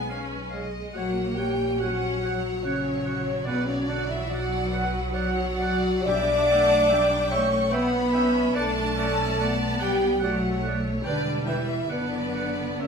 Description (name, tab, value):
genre	classical, slow romantic movement for symphony orchestra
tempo	71 BPM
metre	3/4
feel	rubato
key	B minor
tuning	A4 = 440 Hz
part	warm chamber violin section	melody	0.0-12.9 s	A#4 to G5	-36 LUFS	left 2 dB	none
part	clear chamber violin section	second line	0.0-12.9 s	B4 to D6	-35 LUFS	right 1 dB	none
part	large flute ensemble	second line	0.0-12.9 s	B4 to D6	-34 LUFS	equal	none
part	rich chamber viola section	accompaniment	0.0-12.9 s	F#3 to D4	-32 LUFS	equal	none
part	mellow French horn section	sustained chords	0.0-12.9 s	B3 to D5	-26 LUFS	left 1 dB	none
part	clear studio cello section	bass	0.0-12.9 s	B2 to D4	-31 LUFS	left 1 dB	none
part	rich chamber double bass section	bass	0.0-12.9 s	E1 to B1	-32 LUFS	right 2 dB	none
part	clear oboe	second line	0.1-12.9 s	E5 to G5	-37 LUFS	right 8 dB	none
part	warm clarinet	second line	0.1-12.9 s	A#4 to E5	-38 LUFS	right 1 dB	none
part	timpani	percussion	3.5-7.3 s	B2	-38 LUFS	right 1 dB	none
room	wet stone room reverb, RT60 1.2 s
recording	minimal, uncompressed stereo recording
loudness	-22 LUFS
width	side -6 dB against mid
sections	0.0-12.9 A section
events	none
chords	0.0 C#7/B; 0.9 F#/A#; 3.5 Bm; 6.1 Em/B; 8.6 Bm; 11.1 Em; 11.9 Bm/F#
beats	0.10 | 0.95 1.80 2.65 | 3.47 4.31 5.14 | 6.08 6.91 7.73 | 8.57 9.40 10.23 | 11.05 11.91 12.82